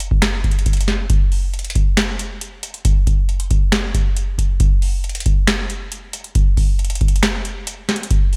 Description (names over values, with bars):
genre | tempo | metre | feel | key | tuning
hip hop | 137 BPM | 4/4 | half-time | none | none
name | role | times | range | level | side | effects
booming analog drum machine | drums | 0.0-8.4 s | finger snaps, hi-hat, kick drum, snare drum | -18 LUFS | equal | none
room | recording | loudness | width
little or no reverb | none | -18 LUFS | mono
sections
0.0-1.1 A section; 1.1-8.4 B section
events
break 7.2-8.1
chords
none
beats
0.22 0.66 | 1.10 1.54 1.97 2.41 | 2.85 3.29 3.73 4.16 | 4.60 5.04 5.48 5.92 | 6.35 6.79 7.23 7.67 | 8.11